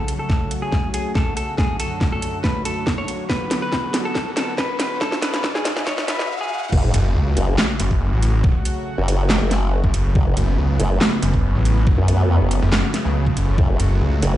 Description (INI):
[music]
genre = heavy wobble dubstep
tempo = 140 BPM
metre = 4/4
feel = half-time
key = F# minor from 6.7 s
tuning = A4 = 440 Hz
[part]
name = semi-hollow electric guitar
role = melody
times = 0.0-6.7 s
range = G#4 to C#5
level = -27 LUFS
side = left 1 dB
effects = low-pass filter, dub echo
[part]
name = lush unison pad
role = sustained chords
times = 0.0-14.4 s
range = F#2 to F#4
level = -27 LUFS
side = equal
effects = chorus, vintage 12-bit sampler grit, sidechain pumping
[part]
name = riser, swell and sub drop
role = sound effects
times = 0.0-8.4 s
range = none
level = -29 LUFS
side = equal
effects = none
[part]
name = dubstep drum kit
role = drums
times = 0.1-14.3 s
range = crash cymbal, handclaps, hi-hat, snare drum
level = -23 LUFS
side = equal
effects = studio reverb
[part]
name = electronic kick drum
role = drums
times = 0.3-13.7 s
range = none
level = -20 LUFS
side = equal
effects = studio reverb
[part]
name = formant-sweep wobble bass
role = bass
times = 6.7-14.4 s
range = F#1 to F#2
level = -18 LUFS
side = equal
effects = chorus, overdrive
[part]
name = snarling distorted saw bass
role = bass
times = 6.9-14.2 s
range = F#1 to C#2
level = -18 LUFS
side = equal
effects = distortion, overdrive
[sound]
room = light reverb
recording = played on a big sound system in a bare room, large studio reverb, high-pass filter, nothing above 10.7 kHz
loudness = -17 LUFS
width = side -13 dB against mid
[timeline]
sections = 0.0-6.7 A section; 6.7-14.4 B section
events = build-up 0.0-6.7; drum fill 0.0-6.3; riser 0.0-6.7; filter sweep 0.0-6.7; swell 5.9-6.7; break 6.3-6.7; drop 6.7-14.4; impact 6.7-8.4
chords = 0.0 F#m; 1.6 D/F#; 3.3 Bm; 5.0 C#; 6.7 F#m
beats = 0.30 0.72 1.15 | 1.58 2.01 2.44 2.87 | 3.30 3.72 4.15 4.58 | 5.01 5.44 5.87 6.30 | 6.72 7.15 7.58 8.01 | 8.44 8.87 9.30 9.72 | 10.15 10.58 11.01 11.44 | 11.87 12.30 12.72 13.15 | 13.58 14.01